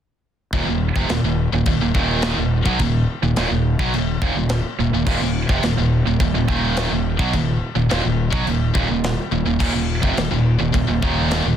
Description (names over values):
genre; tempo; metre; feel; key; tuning
heavy metal; 106 BPM; 4/4; straight; Eb minor; A4 = 440 Hz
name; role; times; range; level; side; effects
scooped high-gain guitar; riff; 0.5-11.6 s; Eb2 to Gb3; -22 LUFS; left 7 dB; distortion
tight distorted guitar; riff; 0.5-11.6 s; Eb2 to Gb3; -22 LUFS; right 9 dB; distortion
fuzz fingered electric bass; bass; 0.5-11.6 s; Eb1 to Cb2; -24 LUFS; equal; overdrive
tight metal drum kit; drums; 0.5-11.4 s; china cymbal, crash cymbal, kick drum, snare drum; -24 LUFS; equal; none
room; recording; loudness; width
little or no reverb; dense, heavily limited modern master; -17 LUFS; side -9 dB against mid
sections
0.5-11.6 A section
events
none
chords
0.5 Eb5